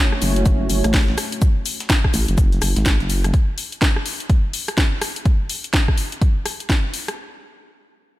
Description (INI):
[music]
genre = bass house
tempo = 125 BPM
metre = 4/4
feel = swing 62% on 16ths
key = F# minor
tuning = A4 = 440 Hz
[part]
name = dark analog pad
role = sustained chords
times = 0.0-1.4 s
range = A3 to C#5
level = -25 LUFS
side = equal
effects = chorus, sidechain pumping
[part]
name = house drum kit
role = drums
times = 0.1-7.2 s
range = hi-hat, rim click, snare drum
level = -23 LUFS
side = left 1 dB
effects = overdrive, studio reverb
[part]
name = vowel-sweep wobble bass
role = bass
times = 0.2-3.3 s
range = F#1 to A1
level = -19 LUFS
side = equal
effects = chorus, overdrive, sidechain pumping
[part]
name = breakbeat sampler-style drum kit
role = drums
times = 0.2-3.2 s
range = hi-hat, shaker, snare drum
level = -32 LUFS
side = left 2 dB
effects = high-pass filter on perc, studio reverb, high-pass filter on snare, high-pass filter on hats
[part]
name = electronic kick drum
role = drums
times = 0.5-6.8 s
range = none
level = -17 LUFS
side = equal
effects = overdrive, studio reverb
[sound]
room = digital ambience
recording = none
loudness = -17 LUFS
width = side -16 dB against mid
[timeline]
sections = 0.0-7.2 A section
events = none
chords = 0.0 F#m